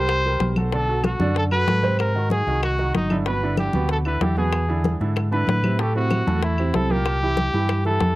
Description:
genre	latin, salsa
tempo	189 BPM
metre	4/4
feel	straight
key	E minor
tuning	A4 = 440 Hz
part	clear trumpet	melody	0.0-8.2 s	D#4 to C5	-25 LUFS	equal	none
part	bright upright piano	accompaniment	0.0-8.1 s	A2 to D5	-26 LUFS	right 4 dB	none
part	fingered electric bass	bass	0.0-8.2 s	G1 to A2	-23 LUFS	equal	none
part	bongos	percussion	0.1-8.2 s	none	-28 LUFS	left 8 dB	none
part	claves	percussion	0.1-7.8 s	none	-37 LUFS	left 3 dB	none
part	congas	percussion	0.1-8.2 s	none	-27 LUFS	left 1 dB	none
room	little or no reverb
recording	dry, close 1970s-style studio recording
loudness	-19 LUFS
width	side -17 dB against mid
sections	0.0-8.2 A section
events	none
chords	0.1 C5; 0.7 Bm7; 2.0 G#7#11; 3.3 G6; 4.5 E7; 5.8 Am; 7.1 C7

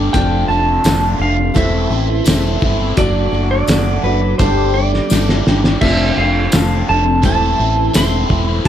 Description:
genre	folk rock and heartland rock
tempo	85 BPM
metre	4/4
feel	straight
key	unclear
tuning	A4 = 440 Hz
part	clear upright piano	accompaniment	0.0-8.7 s	E4 to D5	-31 LUFS	right 2 dB	none
part	picked steel-string acoustic guitar	accompaniment	0.0-8.7 s	G2 to A4	-21 LUFS	left 3 dB	none
part	mellow tonewheel organ	sustained chords	0.0-8.7 s	F4 to D6	-31 LUFS	equal	none
part	overdriven electric guitar	riff	0.0-8.7 s	F2 to G4	-21 LUFS	right 1 dB	phaser
part	fingered electric bass	bass	0.0-8.7 s	E1 to A1	-17 LUFS	equal	none
part	clean lap steel guitar	melody	0.1-8.7 s	B4 to C6	-19 LUFS	right 1 dB	none
part	cloth-damped thuddy drum kit	drums	0.1-8.7 s	crash cymbal, hi-hat, kick drum, snare drum	-16 LUFS	equal	none
part	tambourine	percussion	0.8-8.1 s	none	-28 LUFS	left 6 dB	none
room	light reverb, small room ambience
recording	none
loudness	-12 LUFS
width	side -10 dB against mid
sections	0.0-8.7 A section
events	drum fill 5.1-5.8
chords	0.1 F6; 1.6 Am/E; 3.0 D/F#; 4.4 Gsus2; 5.8 F6; 7.2 Am/E

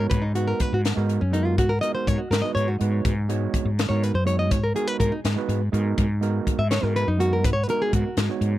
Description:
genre	electric jazz fusion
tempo	82 BPM (dotted quarters)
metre	6/8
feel	straight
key	G# minor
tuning	A4 = 438 Hz
part	nylon-string guitar	melody	0.0-8.4 s	C#4 to E5	-26 LUFS	equal	tape echo
part	overdriven tine electric piano	accompaniment	0.0-8.5 s	G#3 to C#5	-29 LUFS	right 7 dB	none
part	woody fretless electric bass	bass	0.0-8.6 s	F#2 to G#2	-23 LUFS	equal	none
part	crisp fusion drum kit	drums	0.1-8.5 s	hi-hat, kick drum, snare drum	-26 LUFS	left 1 dB	none
room	little or no reverb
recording	none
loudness	-21 LUFS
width	side -14 dB against mid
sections	0.0-8.6 A section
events	nylon-string guitar solo 0.0-8.6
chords	0.0 G#m9

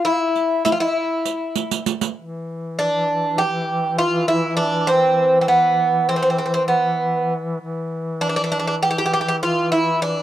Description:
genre	Turkish makam ensemble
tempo	199 BPM (eighths)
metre	9/8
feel	straight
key	E makam kurdi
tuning	A4 = 439 Hz
part	Greek bouzouki	melody	0.0-10.2 s	B3 to G4	-18 LUFS	right 1 dB	cassette tape, tape echo
part	breathy mellow low ney	second line	0.0-1.8 s	E5 to F5	-23 LUFS	left 9 dB	cassette tape
part	riq	percussion	0.4-2.2 s	none	-22 LUFS	right 10 dB	none
part	warm duduk	drone	2.2-10.2 s	E3	-25 LUFS	left 1 dB	cassette tape
room	moderate studio reverb, RT60 0.5 s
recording	home recording on cassette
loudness	-17 LUFS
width	side -12 dB against mid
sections	0.0-2.2 A section; 2.2-10.2 B section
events	drum fill 1.6-2.2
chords	none

